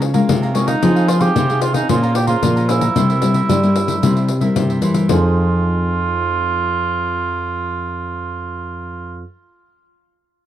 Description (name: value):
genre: samba and choro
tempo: 112 BPM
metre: 4/4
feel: straight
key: F minor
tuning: A4 = 440 Hz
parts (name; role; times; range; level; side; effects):
- cavaquinho; accompaniment; 0.0-9.3 s; Eb4 to Bb5; -27 LUFS; right 5 dB; none
- nylon-string guitar; accompaniment; 0.0-9.3 s; G2 to C5; -20 LUFS; left 2 dB; none
- nylon-string guitar; bass; 0.0-9.2 s; F2 to G3; -19 LUFS; right 1 dB; none
- pandeiro; percussion; 0.0-5.2 s; none; -21 LUFS; left 7 dB; none
- dark cor anglais; melody; 0.5-9.2 s; Db4 to G4; -21 LUFS; right 4 dB; none
room: studio reverb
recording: dry, close 1970s-style studio recording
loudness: -14 LUFS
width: side -11 dB against mid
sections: 0.0-5.1 A section; 5.1-9.4 B section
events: none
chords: 0.0 Bbm7/Db; 0.8 Fm7; 1.9 Bbm9; 3.0 C7; 5.1 Fm7